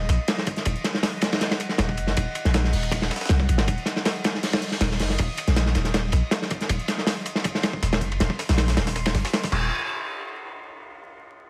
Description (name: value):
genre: drum and bass, jungle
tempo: 159 BPM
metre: 4/4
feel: straight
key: Eb dorian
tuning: A4 = 441 Hz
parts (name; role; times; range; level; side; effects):
- long sustained 808-style bass; bass; 0.0-9.7 s; Eb1 to C2; -25 LUFS; equal; tube saturation
- drifting glass-harmonics texture; texture; 0.0-9.7 s; Eb5 to Eb6; -40 LUFS; equal; chorus, built-in reverb
- breakbeat sampler-style drum kit; drums; 0.1-9.5 s; hi-hat, snare drum; -37 LUFS; equal; high-pass filter on hats, high-pass filter on snare
- crunchy breakbeat drum kit; drums; 0.1-9.6 s; crash cymbal, hi-hat, kick drum, ride cymbal, snare drum; -27 LUFS; equal; high-pass filter on kick, high-pass filter on cymbals, high-pass filter on hats, high-pass filter on snare, high-pass filter on room
room: studio reverb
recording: vinyl crackle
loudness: -24 LUFS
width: mono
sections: 0.0-9.7 A section; 9.7-11.2 B section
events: none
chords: 0.0 Ebm6; 9.5 Cm/Eb; 9.7 N.C.